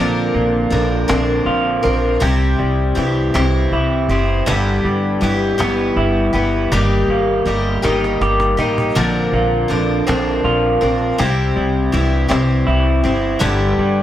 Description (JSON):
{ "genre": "folk rock and heartland rock", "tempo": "54 BPM (dotted quarters)", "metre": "6/8", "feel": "straight", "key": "C major", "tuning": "A4 = 440 Hz", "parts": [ { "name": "picked twelve-string acoustic guitar", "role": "accompaniment", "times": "0.0-14.0 s", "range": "G2 to Bb4", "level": "-18 LUFS", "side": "left 2 dB", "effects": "none" }, { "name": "electric guitar through a small old amp", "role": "riff", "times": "0.0-14.0 s", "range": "G2 to G4", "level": "-19 LUFS", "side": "right 2 dB", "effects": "wide subtle chorus" }, { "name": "upright bass", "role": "bass", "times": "0.0-14.0 s", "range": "F#1 to C2", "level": "-20 LUFS", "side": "equal", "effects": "none" }, { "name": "cajon", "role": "drums", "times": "0.3-13.9 s", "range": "none", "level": "-25 LUFS", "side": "equal", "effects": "none" } ], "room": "light reverb, small room ambience", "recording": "none", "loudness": "-14 LUFS", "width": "side -12 dB against mid", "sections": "0.0-14.0 A section", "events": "drum fill 7.8-9.0", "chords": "0.0 Bbadd9; 2.2 C; 4.5 G6; 6.7 Eb/G; 9.0 Bbadd9; 11.2 C; 13.4 G6" }